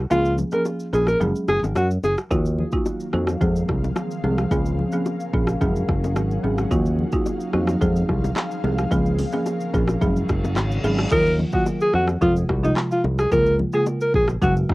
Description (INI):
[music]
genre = afrobeats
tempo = 109 BPM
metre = 4/4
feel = straight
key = Eb dorian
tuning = A4 = 440 Hz
[part]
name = folk marimba with medium mallets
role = accompaniment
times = 0.0-14.7 s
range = C3 to Ab4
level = -25 LUFS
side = right 1 dB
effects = cassette tape
[part]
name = fingered electric bass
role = bass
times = 0.0-14.7 s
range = Gb1 to Gb2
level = -23 LUFS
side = equal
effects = none
[part]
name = breathy alto saxophone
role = melody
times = 0.1-2.2, 11.1-14.5 s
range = Eb4 to Bb4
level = -20 LUFS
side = equal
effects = cassette tape
[part]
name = afro-pop drum kit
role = drums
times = 0.1-14.7 s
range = crash cymbal, handclaps, hi-hat, kick drum, rim click, shaker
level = -26 LUFS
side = equal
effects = cassette tape
[part]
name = congas and bongos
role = percussion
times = 0.1-14.7 s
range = none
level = -30 LUFS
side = left 3 dB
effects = none
[part]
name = ethereal airy pad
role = sustained chords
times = 2.8-11.1 s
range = Db4 to F5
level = -30 LUFS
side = equal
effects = ensemble chorus, built-in reverb, cassette tape
[part]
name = reverse cymbal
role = sound effects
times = 10.3-11.1 s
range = none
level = -33 LUFS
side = left 2 dB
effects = none
[sound]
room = light reverb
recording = home recording on cassette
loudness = -19 LUFS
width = side -20 dB against mid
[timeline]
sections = 0.0-2.3 A section; 2.3-11.1 B section; 11.1-14.7 C section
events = kick muted 0.1-2.3; reverse cymbal 10.3-11.1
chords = 0.1 Db6; 1.2 Gbsus2; 2.3 Ebmadd9; 3.4 Fm; 4.5 Db6; 5.6 Gbsus2; 6.7 Ebmadd9; 7.8 Fm; 8.9 Db6; 10.0 Gbsus2; 11.1 Ebmadd9; 12.2 Fm; 13.3 Db6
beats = | 0.11 0.66 1.21 1.76 | 2.31 2.86 3.41 3.96 | 4.51 5.06 5.61 6.16 | 6.71 7.26 7.81 8.36 | 8.91 9.46 10.01 10.56 | 11.12 11.67 12.22 12.77 | 13.32 13.87 14.42